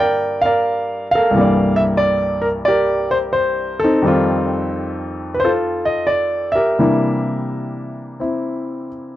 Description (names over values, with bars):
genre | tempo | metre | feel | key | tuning
solo jazz | 88 BPM | 4/4 | swing 68% on 8ths, rubato | unclear | A4 = 440 Hz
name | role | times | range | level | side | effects
clear baby grand piano | solo | 0.0-9.2 s | C2 to G5 | -16 LUFS | equal | none
room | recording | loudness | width
small room ambience | dry, close 1970s-style studio recording | -15 LUFS | side -14 dB against mid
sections
0.0-9.2 A section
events
none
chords
0.0 Gm7; 1.3 C13; 4.1 F9; 6.8 C9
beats
0.65 | 1.33 2.01 2.69 3.38 | 4.06 4.74 5.42 6.10 | 6.79 7.49 8.20 8.92